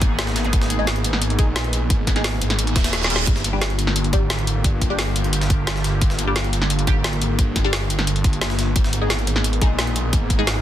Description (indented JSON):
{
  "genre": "dark technical drum and bass",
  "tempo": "175 BPM",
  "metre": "4/4",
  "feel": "straight",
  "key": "G phrygian",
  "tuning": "A4 = 441 Hz",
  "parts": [
    { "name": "sweeping resonant pad", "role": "sustained chords", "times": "0.0-10.6 s", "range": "D3 to Ab4", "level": "-26 LUFS", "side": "right 1 dB", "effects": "chorus, sidechain pumping" },
    { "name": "snarling distorted saw bass", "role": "bass", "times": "0.0-10.6 s", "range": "Eb1 to Bb1", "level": "-23 LUFS", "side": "equal", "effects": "distortion, overdrive, sidechain pumping" },
    { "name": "drum and bass drum kit", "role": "drums", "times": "0.0-10.5 s", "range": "hi-hat, snare drum", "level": "-24 LUFS", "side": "equal", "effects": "soft clipping on snare" },
    { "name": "electronic kick drum", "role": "drums", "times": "0.0-10.4 s", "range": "none", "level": "-19 LUFS", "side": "equal", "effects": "none" },
    { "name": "jungle sampler-style drum kit", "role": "drums", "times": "0.0-10.6 s", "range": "hi-hat, snare drum", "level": "-31 LUFS", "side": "equal", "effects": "high-pass filter on hats, high-pass filter on snare, high-pass filter on room" },
    { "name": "zap and reverse cymbal", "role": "sound effects", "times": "0.4-3.3 s", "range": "none", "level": "-28 LUFS", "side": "right 5 dB", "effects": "none" },
    { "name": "filtered dub chord stab", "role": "stabs", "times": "0.8-10.5 s", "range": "G3 to Ab4", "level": "-29 LUFS", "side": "left 2 dB", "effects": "phaser, wide subtle chorus, cassette tape, digital delay" }
  ],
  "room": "little or no reverb",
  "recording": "dense, heavily limited modern master",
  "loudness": "-18 LUFS",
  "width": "side -12 dB against mid",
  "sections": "0.0-10.6 A section",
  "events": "reverse cymbal 2.7-3.3; drum fill 2.9-3.3",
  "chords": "0.0 Abmadd9; 3.3 Gm7; 8.8 Abmadd9"
}